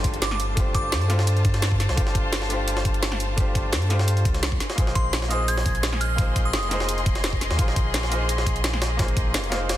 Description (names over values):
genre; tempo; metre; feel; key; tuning
liquid drum and bass; 171 BPM; 4/4; straight; G phrygian; A4 = 440 Hz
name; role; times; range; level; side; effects
bright grand piano; accompaniment; 0.0-9.8 s; A3 to C5; -31 LUFS; equal; digital delay
clear studio string section; sustained chords; 0.0-9.8 s; F4 to C6; -32 LUFS; left 2 dB; sidechain pumping
warm sub bass; bass; 0.0-9.8 s; F1 to G2; -25 LUFS; equal; tube saturation
drum and bass drum kit; drums; 0.0-9.8 s; hi-hat, snare drum; -29 LUFS; equal; overdrive, studio reverb
electronic kick drum; drums; 0.0-9.2 s; none; -24 LUFS; equal; overdrive, studio reverb
jungle sampler-style drum kit; drums; 0.0-9.8 s; hi-hat, snare drum; -31 LUFS; equal; overdrive, high-pass filter on hats, studio reverb, high-pass filter on snare
downlifter; sound effects; 0.0-2.0 s; none; -40 LUFS; equal; none
glassy synth bell; melody; 0.2-1.1, 5.0-6.7 s; C6 to Ab6; -30 LUFS; right 2 dB; chorus, digital delay
room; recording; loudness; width
light reverb; dense, heavily limited modern master; -20 LUFS; side -13 dB against mid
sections
0.0-9.8 A section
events
none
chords
0.0 G9sus4; 4.6 Bb9sus4